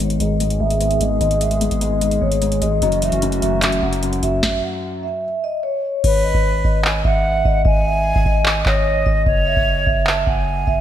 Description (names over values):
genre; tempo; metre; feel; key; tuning
hip hop, trap; 149 BPM; 4/4; half-time; G# phrygian; A4 = 440 Hz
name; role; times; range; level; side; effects
felt-muted upright piano; accompaniment; 0.0-5.2 s; F#2 to G#3; -23 LUFS; left 4 dB; analog chorus, low-pass filter
hollow soft pad; sustained chords; 0.0-4.4 s; D#3 to G#4; -27 LUFS; right 2 dB; chorus, low-pass filter
long sustained 808-style bass; bass; 0.0-10.8 s; F#1 to G#1; -22 LUFS; equal; none
booming analog drum machine; drums; 0.0-10.8 s; crash cymbal, handclaps, hi-hat, kick drum, snare drum; -20 LUFS; equal; none
vibraphone with soft mallets; melody; 0.2-10.8 s; C#5 to F#5; -21 LUFS; moving between left 5 dB and right 5 dB; auto-pan, low-pass filter, ping-pong delay
breathy concert flute; second line; 6.0-10.8 s; B4 to A5; -22 LUFS; right 1 dB; ping-pong delay
room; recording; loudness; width
moderate lush hall reverb, RT60 2.1 s; bright 1980s-style digital production; -16 LUFS; side -10 dB against mid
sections
0.0-6.0 A section; 6.0-10.8 B section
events
filter sweep 0.0-6.0; stop 4.4-6.0; hi-hats muted 6.0-10.8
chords
0.0 G#m; 2.8 F#m7; 6.0 G#m; 9.3 F#5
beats
0.00 0.40 0.81 | 1.21 1.61 2.01 2.42 | 2.82 3.22 3.62 4.03 | 4.43 4.83 5.24 5.64 | 6.04 6.44 6.85 7.25 | 7.65 8.05 8.46 8.86 | 9.26 9.66 10.07 10.47